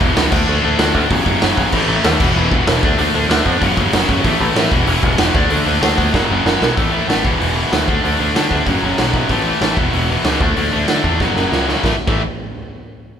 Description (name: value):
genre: punk rock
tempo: 190 BPM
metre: 4/4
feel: straight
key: A major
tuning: A4 = 440 Hz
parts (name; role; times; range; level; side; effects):
- distorted electric guitar; riff; 0.0-12.2 s; E2 to D4; -16 LUFS; left 1 dB; overdrive
- overdriven picked electric bass; bass; 0.0-12.2 s; E1 to D3; -20 LUFS; equal; none
- raw garage drum kit; drums; 0.0-12.2 s; crash cymbal, hi-hat, kick drum, snare drum; -18 LUFS; right 1 dB; none
room: light reverb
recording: band playing live in one room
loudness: -13 LUFS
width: side -8 dB against mid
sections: 0.0-6.8 A section; 6.8-11.8 B section; 11.8-13.1 C section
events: drum fill 6.1-6.8, 11.2-11.8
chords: 0.3 D5; 1.1 F#5; 1.7 A5; 2.2 E5; 2.8 D5; 3.6 F#5; 4.3 A5; 4.7 E5; 5.4 D5; 6.1 F#5; 6.8 A5; 7.2 E5; 7.9 D5; 8.7 F#5; 9.3 A5; 9.8 E5; 10.4 D5; 11.2 F#5; 11.8 A5